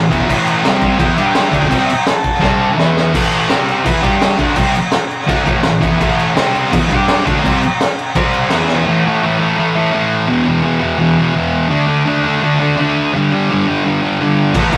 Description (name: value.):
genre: garage rock duo or trio.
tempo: 168 BPM.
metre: 4/4.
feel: straight.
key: unclear.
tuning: A4 = 439 Hz.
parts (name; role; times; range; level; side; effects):
thick fuzz guitar; riff; 0.0-14.8 s; E2 to G4; -15 LUFS; equal; distortion.
raw garage drum kit; drums; 0.1-8.8, 14.5-14.8 s; crash cymbal, kick drum, snare drum; -18 LUFS; equal; none.
clear harmonica; melody; 1.0-2.8 s; E5 to A5; -22 LUFS; equal; overdrive.
room: light reverb.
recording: rough rehearsal-room recording.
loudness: -14 LUFS.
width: mono.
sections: 0.0-3.1 A section; 3.1-8.9 B section; 8.9-14.8 C section.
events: drum fill 2.4-3.1, 8.7.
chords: 0.0 A5; 0.6 C5; 1.0 Em; 1.2 G5; 1.5 C69; 2.4 C5; 2.8 E5; 3.1 A5; 3.5 C5; 3.8 E5; 4.0 G5; 4.4 A5; 6.4 C5; 6.7 E5; 6.9 G5; 7.2 Csus2; 8.1 C5; 8.5 E5; 8.9 A5; 10.3 E5; 11.7 D5; 13.1 G5.